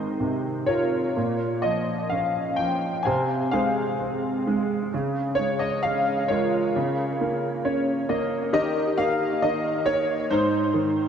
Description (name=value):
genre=classical, lyrical solo piano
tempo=61-69 BPM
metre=4/4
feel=rubato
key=Bb dorian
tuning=A4 = 438 Hz
part: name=clear concert grand piano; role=solo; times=0.0-11.1 s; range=Ab2 to Ab5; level=-22 LUFS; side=equal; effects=analog chorus, diffuse ambient delay
room=wet plate reverb, RT60 2.6 s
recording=dreamy mix soaked in reverb, cassette tape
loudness=-22 LUFS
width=side -8 dB against mid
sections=0.0-11.1 A section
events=grand piano fill 7.2-8.5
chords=0.0 Ab; 1.2 Bbm; 3.1 Fm/C; 4.9 Db; 6.8 Bbm/Db; 8.5 Eb; 10.3 Ab